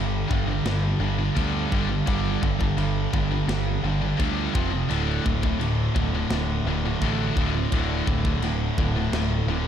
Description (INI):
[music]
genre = heavy metal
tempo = 85 BPM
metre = 4/4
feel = straight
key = D minor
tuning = A4 = 441 Hz
[part]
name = heavy high-gain guitar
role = riff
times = 0.0-9.7 s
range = D2 to G3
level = -29 LUFS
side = left 10 dB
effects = distortion
[part]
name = sludgy distorted guitar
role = riff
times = 0.0-9.7 s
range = D2 to G3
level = -28 LUFS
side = right 8 dB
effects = overdrive
[part]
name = tight distorted guitar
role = riff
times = 0.0-9.7 s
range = D2 to G3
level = -30 LUFS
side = equal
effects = distortion
[part]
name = growling picked electric bass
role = bass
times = 0.0-9.7 s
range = D1 to D2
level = -27 LUFS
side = left 1 dB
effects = overdrive
[part]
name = tight metal drum kit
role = drums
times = 0.3-9.3 s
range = china cymbal, kick drum, snare drum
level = -29 LUFS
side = left 1 dB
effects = none
[sound]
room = studio reverb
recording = dark, warm production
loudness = -22 LUFS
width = side -9 dB against mid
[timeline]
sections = 0.0-9.7 A section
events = none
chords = 0.0 G5; 4.5 F5; 4.9 D5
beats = 0.66 1.37 | 2.07 2.78 3.48 4.19 | 4.90 5.60 6.31 7.01 | 7.72 8.43 9.13